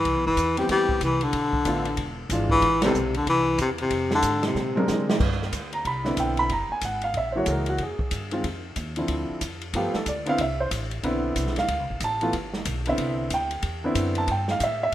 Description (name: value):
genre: jazz, small-group swing and bop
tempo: 185 BPM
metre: 4/4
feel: swing 62% on 8ths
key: C major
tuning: A4 = 440 Hz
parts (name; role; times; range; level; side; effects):
- breathy baritone saxophone; melody; 0.0-5.1 s; C3 to G3; -22 LUFS; left 2 dB; none
- upright bass; bass; 0.0-14.9 s; E1 to D3; -30 LUFS; equal; none
- open jazz drum kit; drums; 0.0-14.9 s; crash cymbal, hi-hat, kick drum, ride cymbal, snare drum, toms; -30 LUFS; equal; none
- warm baby grand piano; accompaniment; 0.6-14.9 s; D3 to B5; -26 LUFS; right 1 dB; none
room: moderate lush hall reverb, RT60 1.6 s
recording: rough home demo mix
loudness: -22 LUFS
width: side -13 dB against mid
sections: 0.0-5.2 A section; 5.2-14.9 B section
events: band accent 2.8; drum fill 4.6-5.2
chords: 0.0 Cmaj7; 1.3 Bm7b5; 2.0 E7b9; 2.6 Amadd9; 3.9 Fm; 4.6 Bb9; 5.2 Cmaj9; 6.5 F#9; 7.8 Fm7; 9.1 Dm9; 9.7 G9; 10.4 Cmaj9; 11.7 Dm7; 12.3 G6; 13.0 Cmaj9